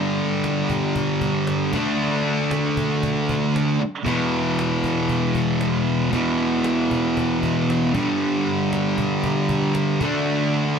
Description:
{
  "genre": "garage rock duo or trio",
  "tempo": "116 BPM",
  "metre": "4/4",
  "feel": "straight",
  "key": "unclear",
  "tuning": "A4 = 439 Hz",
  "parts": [
    { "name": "thick fuzz guitar", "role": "riff", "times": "0.0-10.8 s", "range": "E2 to D4", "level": "-19 LUFS", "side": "equal", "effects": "distortion" },
    { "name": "cajon", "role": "drums", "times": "0.4-10.1 s", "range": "none", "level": "-30 LUFS", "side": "equal", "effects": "none" }
  ],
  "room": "wet studio reverb, RT60 0.5 s",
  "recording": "lossy compression artefacts",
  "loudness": "-19 LUFS",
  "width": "side -6 dB against mid",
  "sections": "0.0-10.8 A section",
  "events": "none",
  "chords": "0.0 G5; 1.7 D5; 4.1 E5; 7.9 G5; 10.0 D5"
}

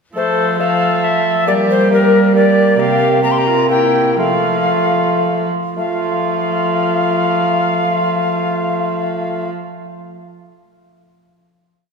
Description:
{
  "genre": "classical, renaissance-style consort dance",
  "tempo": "106-137 BPM",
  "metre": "3/4",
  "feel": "straight",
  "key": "F major",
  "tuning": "A4 = 440 Hz",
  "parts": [
    { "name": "warm viola", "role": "second line", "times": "0.1-9.5 s", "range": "E4 to A4", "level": "-20 LUFS", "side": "right 4 dB", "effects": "none" },
    { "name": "dark cello", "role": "bass", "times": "0.1-9.5 s", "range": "C3 to G3", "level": "-19 LUFS", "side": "right 2 dB", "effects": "none" },
    { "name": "alto recorder", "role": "melody", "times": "0.2-9.5 s", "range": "Bb4 to C6", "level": "-18 LUFS", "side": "left 4 dB", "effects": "none" },
    { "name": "mellow bassoon", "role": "accompaniment", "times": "0.2-9.5 s", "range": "A3 to Bb3", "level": "-19 LUFS", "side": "equal", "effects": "none" }
  ],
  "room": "wet church reverb, RT60 2.6 s",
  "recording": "minimal, uncompressed stereo recording",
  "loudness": "-13 LUFS",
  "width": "side -5 dB against mid",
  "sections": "0.1-5.8 A section; 5.8-9.2 final chord",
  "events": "slowing down 2.1-5.8",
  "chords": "0.1 F; 1.5 Gm; 2.8 C7sus4; 4.2 F"
}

